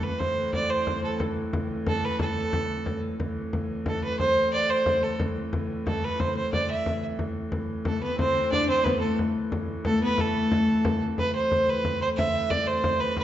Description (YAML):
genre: medieval dance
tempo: 120 BPM (dotted quarters)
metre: 6/8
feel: straight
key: A minor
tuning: A4 = 442 Hz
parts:
  - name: bright fiddle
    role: melody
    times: 0.0-13.2 s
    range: A4 to E5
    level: -26 LUFS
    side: right 2 dB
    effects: none
  - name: dark hurdy-gurdy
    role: drone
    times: 0.0-13.2 s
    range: A2 to E3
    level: -33 LUFS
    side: equal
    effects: none
  - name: frame drum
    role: percussion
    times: 0.2-13.2 s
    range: none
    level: -30 LUFS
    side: left 1 dB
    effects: none
  - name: warm viola da gamba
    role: second line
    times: 7.9-11.0 s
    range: A3 to D4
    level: -26 LUFS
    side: left 2 dB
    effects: none
room: wet recital hall reverb, RT60 1.4 s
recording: nothing above 7.6 kHz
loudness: -24 LUFS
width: side -12 dB against mid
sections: 0.0-3.2 A section; 3.2-11.2 A section; 11.2-13.2 B section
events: none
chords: none